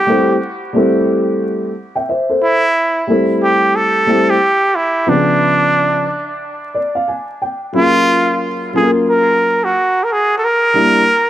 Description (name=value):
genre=hip hop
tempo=90 BPM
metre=4/4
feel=swing 61% on 16ths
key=unclear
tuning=A4 = 441 Hz
part: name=trumpet with straight mute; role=melody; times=0.0-11.3 s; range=D4 to A#4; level=-14 LUFS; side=right 1 dB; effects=dub echo
part: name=dark upright piano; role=accompaniment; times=0.1-11.0 s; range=C#3 to G#5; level=-15 LUFS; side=left 1 dB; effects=none
room=moderate spring reverb, RT60 1.3 s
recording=echo-heavy mix, vinyl crackle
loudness=-12 LUFS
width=side -12 dB against mid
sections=0.0-2.4 A section; 2.4-11.3 B section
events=upright piano fill 6.4-7.8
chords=0.0 Am7; 5.1 C#7b9; 7.8 F#maj9; 10.4 Em7b5